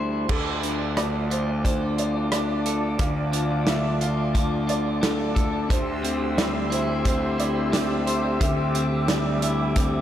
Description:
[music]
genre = post-rock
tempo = 89 BPM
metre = 4/4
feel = straight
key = D minor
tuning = A4 = 442 Hz
[part]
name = brassy analog pad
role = sustained chords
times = 0.0-10.0 s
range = F4 to E6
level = -30 LUFS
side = left 1 dB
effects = chorus
[part]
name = clean electric guitar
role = arpeggios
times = 0.0-10.0 s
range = D3 to C5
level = -28 LUFS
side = left 2 dB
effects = digital delay, slapback echo
[part]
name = fuzz picked electric bass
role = bass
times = 0.0-10.0 s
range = D2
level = -26 LUFS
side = equal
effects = overdrive
[part]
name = felt-muted upright piano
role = arpeggios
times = 0.3-10.0 s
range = A4 to F5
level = -32 LUFS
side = right 2 dB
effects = digital delay, slapback echo
[part]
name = loose indie drum kit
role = drums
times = 0.3-9.9 s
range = crash cymbal, hi-hat, kick drum, rim click, snare drum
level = -26 LUFS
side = right 1 dB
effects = none
[sound]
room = moderate lush hall reverb, RT60 2.7 s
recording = big arena sound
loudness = -21 LUFS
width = side -11 dB against mid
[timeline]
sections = 0.3-10.0 A section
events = none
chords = 0.3 Dm; 5.7 C/D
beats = | 0.30 0.97 1.65 2.33 | 3.00 3.68 4.36 5.03 | 5.71 6.39 7.06 7.74 | 8.42 9.09 9.77

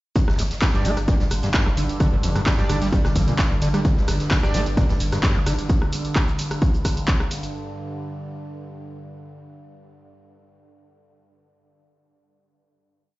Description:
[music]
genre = driving peak-time techno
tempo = 130 BPM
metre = 4/4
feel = straight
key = unclear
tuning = A4 = 442 Hz
[part]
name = screaming distorted acid line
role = riff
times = 0.2-5.5 s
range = G1 to Bb3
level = -26 LUFS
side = equal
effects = distortion, analog chorus, sidechain pumping, digital delay
[part]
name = overtone-sweeping drone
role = drone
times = 1.0-7.6 s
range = G2 to D3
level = -29 LUFS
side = equal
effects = chorus, built-in reverb, sidechain pumping
[part]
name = electronic kick drum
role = drums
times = 0.2-7.2 s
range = none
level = -20 LUFS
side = equal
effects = overdrive
[part]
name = punchy analog drum machine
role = drums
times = 0.2-7.5 s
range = handclaps, hi-hat, rim click, shaker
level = -28 LUFS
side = equal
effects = none
[part]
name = soft-mallet drum kit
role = drums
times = 0.2-5.6 s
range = hi-hat, snare drum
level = -38 LUFS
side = equal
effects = sidechain pumping on hats, high-pass filter on hats, high-pass filter on snare, high-pass filter on room
[part]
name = saturated sub bass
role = bass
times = 0.3-5.6 s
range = G1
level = -26 LUFS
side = equal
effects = overdrive, sidechain pumping, low-pass filter
[part]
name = sync-sweep polysynth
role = stabs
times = 0.7-4.6 s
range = D4 to D5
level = -33 LUFS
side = right 2 dB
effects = chorus, sidechain pumping, digital delay
[sound]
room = digital ambience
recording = played on a big sound system in a bare room, stone room reverb, nothing above 7.6 kHz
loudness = -19 LUFS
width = side -18 dB against mid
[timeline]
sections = 0.2-7.5 drop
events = drop 0.2-7.5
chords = 0.2 G5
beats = | 0.16 0.62 1.08 1.54 | 2.00 2.46 2.93 3.39 | 3.85 4.31 4.77 5.23 | 5.70 6.16 6.62 7.08

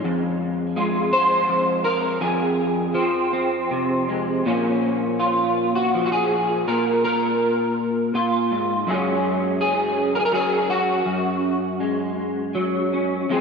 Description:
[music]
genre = folk, solo fingerstyle acoustic guitar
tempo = 82 BPM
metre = 3/4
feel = rubato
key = Bb minor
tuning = A4 = 440 Hz
[part]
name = electric guitar through a small old amp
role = solo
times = 0.0-13.4 s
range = F2 to C5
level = -19 LUFS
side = equal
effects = ensemble chorus, diffuse ambient delay
[sound]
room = wet lush hall reverb, RT60 2.5 s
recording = dreamy mix soaked in reverb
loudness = -19 LUFS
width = side -5 dB against mid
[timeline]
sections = 0.0-4.5 A section; 4.5-13.4 B section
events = none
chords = 0.0 Fm; 4.5 Bbm; 8.9 Gbsus2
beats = | 0.05 0.77 1.49 | 2.21 2.95 3.70 | 4.46 5.20 5.95 | 6.68 7.41 8.14 | 8.87 9.60 10.32 | 11.06 11.79 12.54 | 13.29

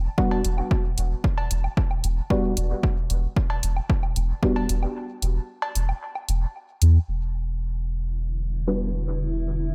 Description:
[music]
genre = dub techno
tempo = 113 BPM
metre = 4/4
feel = straight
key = E minor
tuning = A4 = 440 Hz
[part]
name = soft dub sub bass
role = bass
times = 0.0-9.7 s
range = E1 to E2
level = -25 LUFS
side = equal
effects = sidechain pumping
[part]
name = deep mellow chord stab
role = stabs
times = 0.2-4.6, 8.7-8.9 s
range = G3 to F#4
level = -30 LUFS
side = equal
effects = chorus, phaser, dub echo
[part]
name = electronic kick drum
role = drums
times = 0.2-4.5 s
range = none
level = -27 LUFS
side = equal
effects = overdrive
[part]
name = cowbell and woodblock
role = percussion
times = 0.3-6.3 s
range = none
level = -37 LUFS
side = equal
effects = sidechain pumping on perc, dub echo
[part]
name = electronic hi-hat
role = drums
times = 0.4-6.9 s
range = none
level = -32 LUFS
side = equal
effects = low-pass filter on hats
[part]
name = granular cloud pad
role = sustained chords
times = 8.3-9.7 s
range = D3 to E4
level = -36 LUFS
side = equal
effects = built-in reverb, sidechain pumping
[sound]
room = digital ambience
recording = none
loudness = -25 LUFS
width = mono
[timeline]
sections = 0.0-7.1 A section; 7.1-9.7 B section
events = kick drops out 5.0-7.1; filter sweep on ambient pad 7.1-9.7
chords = 0.0 Em7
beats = 0.18 | 0.71 1.24 1.77 2.30 | 2.83 3.37 3.90 4.43 | 4.96 5.49 6.02 6.55 | 7.08 7.61 8.14 8.68 | 9.21 9.74

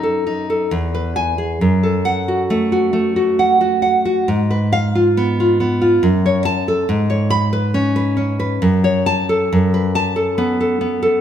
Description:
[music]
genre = romantic piece for solo classical guitar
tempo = 68 BPM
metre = 3/4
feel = rubato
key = unclear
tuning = A4 = 441 Hz
[part]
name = nylon-string guitar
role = solo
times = 0.0-11.2 s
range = E2 to B5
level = -14 LUFS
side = equal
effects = none
[sound]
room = moderate recital hall reverb, RT60 1.5 s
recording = recorded in a church or concert hall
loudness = -14 LUFS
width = side -9 dB against mid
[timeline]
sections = 0.0-11.2 A section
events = none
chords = 0.0 D#dim/F#; 0.7 E; 1.6 F#m; 4.3 Fdim/Ab; 6.0 F#m; 6.9 C#5/G#; 8.6 F#m; 9.5 B5/F#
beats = 0.72 | 1.61 2.50 3.38 | 4.27 5.15 6.01 | 6.88 7.74 8.62 | 9.50 10.37

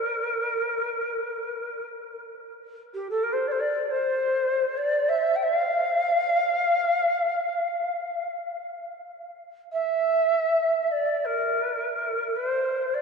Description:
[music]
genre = world meditative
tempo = free time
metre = none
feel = none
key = Bb lydian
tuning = A4 = 440 Hz
[part]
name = Native American-style cedar flute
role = solo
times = 0.0-13.0 s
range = G4 to G5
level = -24 LUFS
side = equal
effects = ping-pong delay
[sound]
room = wet cathedral reverb, RT60 5.6 s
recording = in a vast, echoing space, nothing above 10.7 kHz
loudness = -23 LUFS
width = side -5 dB against mid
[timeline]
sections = 0.0-13.0 A section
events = none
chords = none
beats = free time

